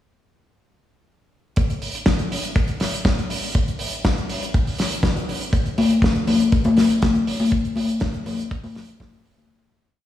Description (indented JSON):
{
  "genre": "nu-disco",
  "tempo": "121 BPM",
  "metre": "4/4",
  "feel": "straight",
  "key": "none",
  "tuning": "none",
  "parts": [
    { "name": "damped 70s drum kit", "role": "drums", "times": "1.6-9.5 s", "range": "hi-hat, snare drum", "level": "-24 LUFS", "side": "equal", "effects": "studio reverb" },
    { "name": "kick drum", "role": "drums", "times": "1.6-9.1 s", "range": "none", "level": "-21 LUFS", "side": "equal", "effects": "studio reverb" },
    { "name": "congas", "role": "percussion", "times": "5.8-9.5 s", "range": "none", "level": "-19 LUFS", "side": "left 3 dB", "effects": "none" }
  ],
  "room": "moderate lush hall reverb, RT60 2.4 s",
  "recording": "played on a big sound system in a bare room, stone room reverb, small room ambience",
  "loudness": "-18 LUFS",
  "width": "side -12 dB against mid",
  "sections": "1.6-9.5 drop",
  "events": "drop 1.6-9.5; fade-out 6.9-9.5",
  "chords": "none",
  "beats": "| 1.57 2.06 2.56 3.05 | 3.55 4.05 4.54 5.04 | 5.53 6.03 6.53 7.02 | 7.52 8.01 8.51 9.00"
}